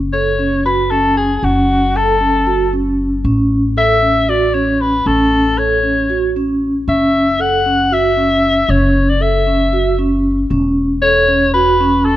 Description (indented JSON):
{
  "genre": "contemporary instrumental, chamber music in an uneven meter",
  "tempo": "232 BPM (eighths)",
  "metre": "7/8",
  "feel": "straight",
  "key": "F# minor",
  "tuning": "A4 = 440 Hz",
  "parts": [
    { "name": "upright bass", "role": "bass", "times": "0.0-12.2 s", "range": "E1 to A1", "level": "-20 LUFS", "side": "equal", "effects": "none" },
    { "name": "warm soprano saxophone", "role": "melody", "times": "0.1-12.2 s", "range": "F#4 to F#5", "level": "-14 LUFS", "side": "left 2 dB", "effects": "none" },
    { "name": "vibraphone with soft mallets", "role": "arpeggios", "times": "0.1-12.2 s", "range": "C#4 to A4", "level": "-16 LUFS", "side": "right 2 dB", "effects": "none" }
  ],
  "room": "light reverb",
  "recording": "close, detailed microphones",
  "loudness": "-12 LUFS",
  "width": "side -14 dB against mid",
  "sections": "0.0-12.2 A section",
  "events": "none",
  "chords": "0.0 F#m; 3.2 A; 6.9 F#7(no3); 10.5 A/E (rootless)"
}